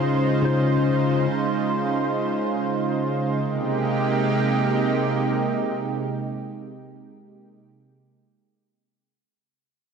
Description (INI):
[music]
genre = amapiano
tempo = free time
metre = none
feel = none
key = Ab major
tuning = A4 = 441 Hz
[part]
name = mellow tine electric piano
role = accompaniment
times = 0.0-1.3 s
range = Db3 to C5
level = -21 LUFS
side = left 3 dB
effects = analog chorus
[part]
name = lush unison pad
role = sustained chords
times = 0.0-7.6 s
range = C3 to C5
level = -22 LUFS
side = right 3 dB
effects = chorus
[sound]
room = light reverb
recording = dense, heavily limited modern master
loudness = -21 LUFS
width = side -6 dB against mid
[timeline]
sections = 0.0-3.4 A section; 3.4-7.8 B section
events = none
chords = 0.0 Dbmaj9; 3.4 Abmaj9